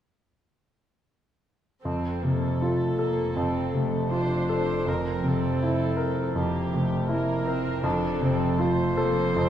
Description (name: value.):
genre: classical, romantic movement for piano and orchestra.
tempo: 80 BPM.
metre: 4/4.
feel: rubato.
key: F major.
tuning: A4 = 440 Hz.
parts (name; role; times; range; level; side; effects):
clear baby grand piano; melody; 1.8-9.5 s; F2 to Bb4; -24 LUFS; left 1 dB; none.
rich studio viola section; accompaniment; 1.8-9.5 s; A3 to C5; -30 LUFS; right 1 dB; none.
dark studio double bass section; bass; 1.8-9.5 s; F1; -35 LUFS; right 4 dB; none.
warm studio cello section; bass; 1.8-9.5 s; F2; -36 LUFS; right 3 dB; none.
room: wet scoring stage reverb, RT60 1.6 s.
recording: heard from further back in the room.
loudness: -23 LUFS.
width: side -10 dB against mid.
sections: 1.8-9.5 A section.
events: none.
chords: 1.8 F; 4.9 C7/F; 7.8 F.